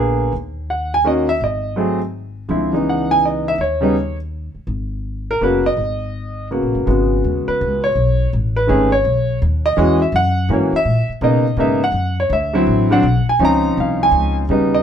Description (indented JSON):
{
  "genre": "jazz piano trio",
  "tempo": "165 BPM",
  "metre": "3/4",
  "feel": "swing 65% on 8ths",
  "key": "G# minor",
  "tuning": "A4 = 435 Hz",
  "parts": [
    { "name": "clear baby grand piano", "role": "melody", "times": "0.0-14.8 s", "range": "C#3 to A#5", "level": "-16 LUFS", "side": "equal", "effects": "none" },
    { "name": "upright bass", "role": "bass", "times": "0.0-14.8 s", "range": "F#1 to B2", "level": "-20 LUFS", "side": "left 1 dB", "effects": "none" }
  ],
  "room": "light reverb",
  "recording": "band playing live in one room",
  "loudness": "-15 LUFS",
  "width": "side -8 dB against mid",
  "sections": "0.0-6.9 A section; 6.9-14.8 B section",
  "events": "none",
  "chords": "0.3 D#m; 1.4 G#5; 2.5 C#m9; 3.6 D#7(no3); 4.7 G#m11; 6.9 G#m7; 8.0 B7sus2; 9.0 E5; 10.1 F#7; 11.2 Bmaj9; 12.3 D9; 13.4 C#maj9"
}